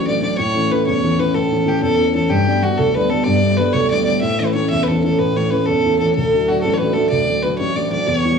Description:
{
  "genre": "celtic folk",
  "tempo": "125 BPM (dotted quarters)",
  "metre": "12/8",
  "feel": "straight",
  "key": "D major",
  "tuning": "A4 = 442 Hz",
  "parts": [
    { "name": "clear fiddle", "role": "melody", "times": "0.0-8.4 s", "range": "F#4 to E5", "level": "-19 LUFS", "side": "left 1 dB", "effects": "cassette tape, plate reverb" },
    { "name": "dark upright piano", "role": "accompaniment", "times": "0.0-8.4 s", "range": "A1 to E4", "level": "-17 LUFS", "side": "equal", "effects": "cassette tape" },
    { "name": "pedal harmonium", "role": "drone", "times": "0.0-8.4 s", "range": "D2 to A2", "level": "-26 LUFS", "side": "right 4 dB", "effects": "cassette tape, plate reverb" }
  ],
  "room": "wet studio reverb, RT60 0.5 s",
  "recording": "home recording on cassette, studio ambience",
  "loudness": "-15 LUFS",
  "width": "side -6 dB against mid",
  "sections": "0.0-8.4 A section",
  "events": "none",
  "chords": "0.4 A; 2.3 G; 4.2 A; 6.1 D"
}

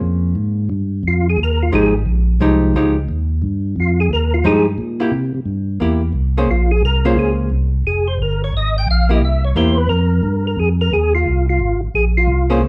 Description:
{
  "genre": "soul jazz organ trio",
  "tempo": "176 BPM",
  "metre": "4/4",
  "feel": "swing 65% on 8ths",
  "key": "F minor",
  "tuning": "A4 = 441 Hz",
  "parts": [
    { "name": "archtop guitar, miked and amplified", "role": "accompaniment", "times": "0.0-9.8, 12.5-12.6 s", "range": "F3 to C5", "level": "-20 LUFS", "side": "equal", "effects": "none" },
    { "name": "tonewheel organ", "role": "bass", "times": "0.0-12.7 s", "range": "F1 to C3", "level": "-19 LUFS", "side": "equal", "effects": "overdrive, slow rotary speaker" },
    { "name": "percussive tonewheel organ", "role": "melody", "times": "1.1-12.6 s", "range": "F4 to G5", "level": "-22 LUFS", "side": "equal", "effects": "slow rotary speaker, chorus vibrato" }
  ],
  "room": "moderate large studio reverb, RT60 1.1 s",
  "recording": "band playing live in one room",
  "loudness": "-17 LUFS",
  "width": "mono",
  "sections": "0.0-10.6 A section; 10.6-12.7 B section",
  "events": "tonewheel organ solo 0.0-10.6",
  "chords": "0.0 Bbm9; 1.0 Fm9; 5.1 C7; 6.5 Bbm9; 7.9 Fmadd9; 9.2 C7; 10.6 Fm7; 11.9 Bbm9"
}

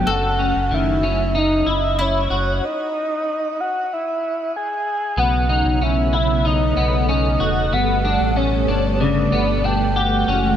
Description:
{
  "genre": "dream pop",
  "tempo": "94 BPM",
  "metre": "4/4",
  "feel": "straight",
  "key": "B mixolydian",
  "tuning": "A4 = 439 Hz",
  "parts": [
    { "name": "soft octave-layered synth lead", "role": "melody", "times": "0.0-10.6 s", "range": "C#5 to G#5", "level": "-22 LUFS", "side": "equal", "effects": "chorus, shimmer reverb, tape echo" },
    { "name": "ensemble organ-string", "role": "sustained chords", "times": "0.0-10.6 s", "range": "B2 to A4", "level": "-24 LUFS", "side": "right 1 dB", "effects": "ensemble chorus, shimmer reverb" },
    { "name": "clean electric guitar", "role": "arpeggios", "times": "0.0-10.6 s", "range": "C#3 to A4", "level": "-22 LUFS", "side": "left 2 dB", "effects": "analog chorus, shimmer reverb, tape echo" },
    { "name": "sub bass with octave", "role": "bass", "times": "0.0-10.6 s", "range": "E1 to B1", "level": "-22 LUFS", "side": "equal", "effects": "none" },
    { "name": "koto", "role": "texture", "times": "0.1-4.2 s", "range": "E4 to F#4", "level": "-35 LUFS", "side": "left 1 dB", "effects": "shimmer reverb, tape echo" }
  ],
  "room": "moderate plate reverb, RT60 2.6 s",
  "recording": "none",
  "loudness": "-17 LUFS",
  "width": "side -9 dB against mid",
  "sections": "0.0-5.2 A section; 5.2-10.6 A section",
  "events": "stop 2.6-5.2",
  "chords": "0.1 F#m7; 2.6 N.C.; 5.2 B9; 7.7 Gmaj9"
}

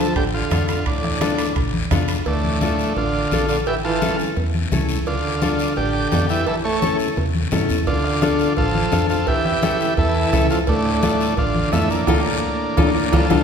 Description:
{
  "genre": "latin, cumbia",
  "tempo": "171 BPM",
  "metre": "4/4",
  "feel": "straight",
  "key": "D harmonic minor",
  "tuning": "A4 = 439 Hz",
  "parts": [
    { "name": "combo organ", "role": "melody", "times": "0.0-13.4 s", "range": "A3 to C#5", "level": "-22 LUFS", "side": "equal", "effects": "none" },
    { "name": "clear trombone", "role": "second line", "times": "0.0-13.4 s", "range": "A2 to A3", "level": "-26 LUFS", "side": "right 3 dB", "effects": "none" },
    { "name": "nylon-string guitar", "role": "accompaniment", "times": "0.0-13.4 s", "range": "C#4 to A4", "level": "-24 LUFS", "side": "left 5 dB", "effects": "none" },
    { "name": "deep dub fingered electric bass", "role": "bass", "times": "0.2-13.4 s", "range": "A1 to G2", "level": "-25 LUFS", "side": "equal", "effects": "none" },
    { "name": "bombo", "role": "percussion", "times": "0.2-2.1, 7.9-13.4 s", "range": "none", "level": "-25 LUFS", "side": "right 1 dB", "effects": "none" },
    { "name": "congas", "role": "percussion", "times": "0.2-13.4 s", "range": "none", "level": "-26 LUFS", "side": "left 2 dB", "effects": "none" },
    { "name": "guiro", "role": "percussion", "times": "0.2-13.4 s", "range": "none", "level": "-32 LUFS", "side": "left 5 dB", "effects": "none" },
    { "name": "timbales and cowbell", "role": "percussion", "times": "0.2-13.4 s", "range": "none", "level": "-29 LUFS", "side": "right 5 dB", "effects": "none" }
  ],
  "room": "wet recital hall reverb, RT60 1.6 s",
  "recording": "recorded in a church or concert hall",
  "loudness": "-17 LUFS",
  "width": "side -7 dB against mid",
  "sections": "0.0-2.3 A section; 2.3-13.4 A section",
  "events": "drum fill 12.1-13.4; band accent 12.1-13.4",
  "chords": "0.0 Dm; 3.7 A; 5.1 Dm; 6.5 A; 7.9 Dm; 9.3 A7; 10.7 Dm"
}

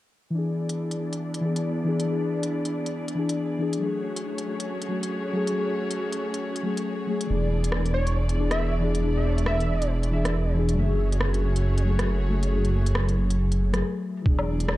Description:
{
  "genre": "future garage",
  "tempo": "138 BPM",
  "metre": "4/4",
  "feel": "swing 61% on 16ths",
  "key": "unclear",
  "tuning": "A4 = 440 Hz",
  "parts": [
    { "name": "muted felt-like synth keys", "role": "accompaniment", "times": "0.3-14.8 s", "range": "E3 to G#4", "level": "-28 LUFS", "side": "left 2 dB", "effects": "chorus, sidechain pumping, low-pass filter, dub echo" },
    { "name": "warm studio string section", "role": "sustained chords", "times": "0.3-14.8 s", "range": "A3 to D5", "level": "-32 LUFS", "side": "equal", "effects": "sidechain pumping, low-pass filter" },
    { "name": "organic electronic drum kit", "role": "drums", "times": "0.7-14.8 s", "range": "hi-hat, rim click, woodblock", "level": "-32 LUFS", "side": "equal", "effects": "none" },
    { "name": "dark detuned saw bass", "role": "bass", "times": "7.3-14.8 s", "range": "E1 to F#1", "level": "-24 LUFS", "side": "equal", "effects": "sidechain pumping" },
    { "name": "plucky unison lead", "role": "melody", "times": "7.9-9.9 s", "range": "C#5 to E5", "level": "-33 LUFS", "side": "right 1 dB", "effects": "analog chorus, dub echo" },
    { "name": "electronic kick drum", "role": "drums", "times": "14.3-14.4 s", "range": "none", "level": "-20 LUFS", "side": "equal", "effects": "none" }
  ],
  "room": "moderate spring reverb, RT60 1.6 s",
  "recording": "echo-heavy mix, cassette tape",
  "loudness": "-23 LUFS",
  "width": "side -16 dB against mid",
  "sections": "0.3-14.3 A section",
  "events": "filter sweep on string section 0.3-14.3; filter sweep on synth keys 0.3-14.3; stop 13.8-14.3",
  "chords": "0.3 E7; 3.8 F#madd9; 7.3 E7; 10.8 F#madd9; 14.3 E7"
}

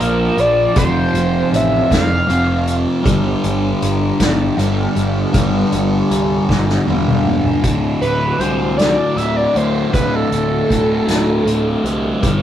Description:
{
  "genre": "psychedelic rock",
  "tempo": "52 BPM (dotted quarters)",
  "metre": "6/8",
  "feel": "straight",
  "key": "unclear",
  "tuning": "A4 = 440 Hz",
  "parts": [
    { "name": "overdriven synth lead", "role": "melody", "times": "0.0-2.7, 8.0-12.1 s", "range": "A4 to F5", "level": "-18 LUFS", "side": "equal", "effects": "slapback echo" },
    { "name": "rich studio string section", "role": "sustained chords", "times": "0.0-12.4 s", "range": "G3 to A5", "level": "-29 LUFS", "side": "right 2 dB", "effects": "none" },
    { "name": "fuzz guitar", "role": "riff", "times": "0.0-12.4 s", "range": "D2 to Bb3", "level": "-17 LUFS", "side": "left 1 dB", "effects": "distortion, phaser" },
    { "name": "fuzz picked electric bass", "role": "bass", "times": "0.0-12.4 s", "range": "D1 to D2", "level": "-21 LUFS", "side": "right 1 dB", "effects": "overdrive" },
    { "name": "soft-mallet drum kit", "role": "drums", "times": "0.0-12.4 s", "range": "hi-hat, kick drum, snare drum, toms", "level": "-19 LUFS", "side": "equal", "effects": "none" }
  ],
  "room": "moderate studio ambience, RT60 0.5 s",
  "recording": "rough rehearsal-room recording",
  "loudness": "-13 LUFS",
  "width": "side -10 dB against mid",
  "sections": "0.0-7.6 A section; 7.6-12.4 B section",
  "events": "drum fill 6.5-7.6; analog synth lead solo 7.6-12.4",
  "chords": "0.0 Bbmaj7; 0.8 F; 3.1 Gadd9; 7.6 D"
}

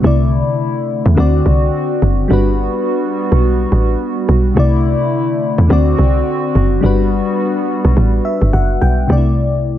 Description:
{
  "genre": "afrobeats",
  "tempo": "106 BPM",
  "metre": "4/4",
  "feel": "swing 58% on 16ths",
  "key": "G major",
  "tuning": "A4 = 440 Hz",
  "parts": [
    { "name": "mellow FM electric piano", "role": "accompaniment", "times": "0.0-9.8 s", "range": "C3 to G5", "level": "-16 LUFS", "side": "left 3 dB", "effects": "chorus" },
    { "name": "hollow soft pad", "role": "sustained chords", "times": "0.0-9.1 s", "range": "D3 to F#4", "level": "-21 LUFS", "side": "right 2 dB", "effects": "chorus" },
    { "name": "woody log drum bass", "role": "bass", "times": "0.0-9.8 s", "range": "F#1 to E2", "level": "-13 LUFS", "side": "equal", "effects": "none" }
  ],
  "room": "digital ambience",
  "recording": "none",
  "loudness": "-12 LUFS",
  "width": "side -12 dB against mid",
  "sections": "0.0-9.1 A section",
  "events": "FM electric piano fill 8.0-9.1",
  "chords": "0.0 C69; 1.2 D7; 2.3 Gmaj7; 4.6 C69; 5.7 D7; 6.8 Gmaj7; 9.1 C69"
}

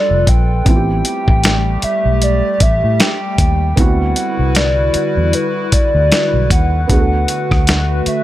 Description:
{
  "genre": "contemporary R&B",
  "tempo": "77 BPM",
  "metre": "4/4",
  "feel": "swing 58% on 16ths",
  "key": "A minor",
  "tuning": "A4 = 440 Hz",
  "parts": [
    { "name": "hollow clarinet-like synth lead", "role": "melody", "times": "0.0-8.2 s", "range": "B4 to G5", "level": "-18 LUFS", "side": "left 1 dB", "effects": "chorus, digital delay" },
    { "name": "felt-muted upright piano", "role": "accompaniment", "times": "0.0-8.2 s", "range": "A3 to A4", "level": "-23 LUFS", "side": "right 5 dB", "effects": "none" },
    { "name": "hollow soft pad", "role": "sustained chords", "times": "0.0-8.2 s", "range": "D3 to B4", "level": "-21 LUFS", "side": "right 1 dB", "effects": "chorus" },
    { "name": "vintage muted fingered electric bass", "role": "bass", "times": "0.1-8.1 s", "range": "F1 to A2", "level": "-16 LUFS", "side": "equal", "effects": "none" },
    { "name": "dusty soul sampler-style drum kit", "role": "drums", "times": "0.3-8.2 s", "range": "hi-hat, kick drum, rim click, snare drum", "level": "-14 LUFS", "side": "equal", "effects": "none" }
  ],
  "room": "little or no reverb",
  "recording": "none",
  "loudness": "-12 LUFS",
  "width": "side -14 dB against mid",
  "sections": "0.0-8.2 A section",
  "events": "none",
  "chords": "0.0 G9; 0.7 Am9; 3.8 D13; 6.9 Bm7/D"
}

